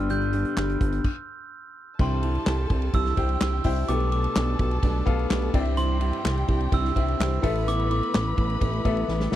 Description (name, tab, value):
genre	piano-driven pop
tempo	127 BPM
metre	4/4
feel	straight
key	C major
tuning	A4 = 440 Hz
part	glockenspiel with rubber mallets	melody	0.0-9.3 s	C6 to G6	-32 LUFS	right 2 dB	none
part	bright upright piano	accompaniment	0.0-9.4 s	G2 to G5	-31 LUFS	left 9 dB	none
part	fingerpicked plugged-in steel-string acoustic guitar	riff	0.0-9.4 s	G2 to G4	-32 LUFS	right 6 dB	none
part	chorused synth bass	bass	0.0-9.4 s	G1 to C2	-26 LUFS	equal	none
part	unplugged drum kit	drums	0.1-9.4 s	crash cymbal, handclaps, hi-hat, kick drum, ride cymbal, snare drum	-27 LUFS	equal	none
part	dark studio violin section	second line	2.0-9.4 s	G4 to B5	-37 LUFS	left 2 dB	none
room	small room ambience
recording	dry, close 1970s-style studio recording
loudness	-22 LUFS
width	side -13 dB against mid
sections	0.0-2.0 A section; 2.0-9.4 B section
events	stop 1.0-2.0; drum fill 9.1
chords	0.0 G; 2.0 C; 3.9 Gadd9/B; 5.5 C; 7.4 Asus2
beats	| 0.10 0.57 1.05 1.52 | 1.99 2.46 2.94 3.41 | 3.88 4.36 4.83 5.30 | 5.77 6.25 6.72 7.19 | 7.67 8.14 8.61 9.08